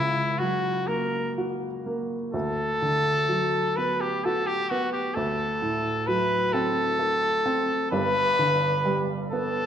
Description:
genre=classical, romantic duo for trumpet and grand piano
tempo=41-44 BPM (dotted quarters)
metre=6/8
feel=rubato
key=B minor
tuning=A4 = 440 Hz
part: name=clear trumpet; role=melody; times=0.0-9.7 s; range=E4 to B4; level=-24 LUFS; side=equal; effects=none
part: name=warm baby grand piano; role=accompaniment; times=0.0-9.7 s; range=G1 to A4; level=-27 LUFS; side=right 1 dB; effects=none
room=moderate scoring stage reverb, RT60 1.6 s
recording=none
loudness=-23 LUFS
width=side -9 dB against mid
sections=0.0-9.7 A section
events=none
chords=0.0 F#/C#; 2.3 Bm/D; 5.2 D7; 7.9 G

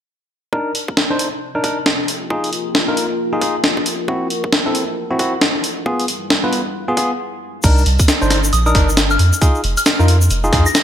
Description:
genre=UK garage, two-step garage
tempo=135 BPM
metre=4/4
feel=swing 61% on 16ths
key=C minor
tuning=A4 = 440 Hz
part: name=barky tine electric piano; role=stabs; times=0.5-10.7 s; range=B3 to C5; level=-21 LUFS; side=equal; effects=low-pass filter, ping-pong delay
part: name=electronic kick drum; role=drums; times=0.5-10.6 s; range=none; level=-16 LUFS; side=equal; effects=high-pass filter on kick
part: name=deep dark ambient pad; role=texture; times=1.6-7.2 s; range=G3 to G5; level=-26 LUFS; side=left 2 dB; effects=chorus, built-in reverb, sidechain pumping
part: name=breakbeat sampler-style drum kit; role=drums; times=0.7-10.8 s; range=crash cymbal, hi-hat, snare drum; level=-18 LUFS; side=equal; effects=gated reverb
part: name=soft dub sub bass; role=bass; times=7.6-10.6 s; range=F1 to F2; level=-15 LUFS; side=equal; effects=none
part: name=egg shaker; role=percussion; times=7.6-10.8 s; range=none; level=-25 LUFS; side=left 3 dB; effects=none
part: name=soft synth bell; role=melody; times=8.5-10.8 s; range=Eb6 to Bb6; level=-21 LUFS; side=left 1 dB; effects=chorus, phaser, ping-pong delay
room=light reverb, digital ambience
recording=bright 1980s-style digital production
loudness=-14 LUFS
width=side -10 dB against mid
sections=0.5-7.6 A section; 7.6-10.8 B section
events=stop 7.2-7.6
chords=0.5 Cm9; 2.1 Fm7; 4.1 D9; 5.6 G7b9; 7.6 Cm9; 9.2 Fm7

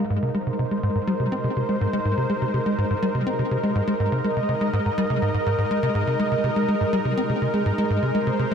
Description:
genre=ambient, sequencer-driven space music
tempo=123 BPM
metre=4/4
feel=straight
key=Ab major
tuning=A4 = 438 Hz
part: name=lush unison pad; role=sustained chords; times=0.0-8.5 s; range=Ab3 to Eb5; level=-25 LUFS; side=equal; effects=chorus, shimmer reverb
part: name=tight sequencer bass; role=riff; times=0.0-8.5 s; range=Ab2 to C4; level=-23 LUFS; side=equal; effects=wide subtle chorus, tape echo
room=wet spring reverb, RT60 2.5 s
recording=echo-heavy mix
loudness=-21 LUFS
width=side -7 dB against mid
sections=0.0-8.5 A section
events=none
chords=0.0 Ab

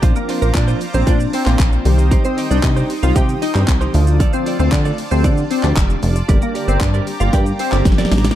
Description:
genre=dance-pop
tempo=115 BPM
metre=4/4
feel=straight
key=Bb major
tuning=A4 = 441 Hz
part: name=funky polysynth comp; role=accompaniment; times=0.0-8.2 s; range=D3 to G4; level=-24 LUFS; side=equal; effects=chorus, sidechain pumping
part: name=sweeping resonant pad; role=sustained chords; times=0.0-8.4 s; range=Eb4 to Eb6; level=-29 LUFS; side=right 3 dB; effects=chorus, sidechain pumping
part: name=direct-recorded clean electric guitar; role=riff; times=0.0-8.3 s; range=D4 to D5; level=-29 LUFS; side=right 6 dB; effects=lush chorus
part: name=plucky analog bass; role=bass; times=0.0-8.3 s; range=F1 to D3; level=-16 LUFS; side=equal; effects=sidechain pumping
part: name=pop drum kit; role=drums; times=0.0-8.4 s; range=handclaps, hi-hat, kick drum, shaker, snare drum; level=-18 LUFS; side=equal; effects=none
part: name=glassy wavetable pluck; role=melody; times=0.2-7.7 s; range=Bb3 to G5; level=-22 LUFS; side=left 2 dB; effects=chorus, sidechain pumping
room=little or no reverb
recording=dark, warm production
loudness=-13 LUFS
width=side -12 dB against mid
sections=0.0-8.4 A section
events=drop 0.0-8.4; drum fill 7.9-8.4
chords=0.0 Bbadd9; 1.9 Cm; 3.9 Dm; 6.3 Gm

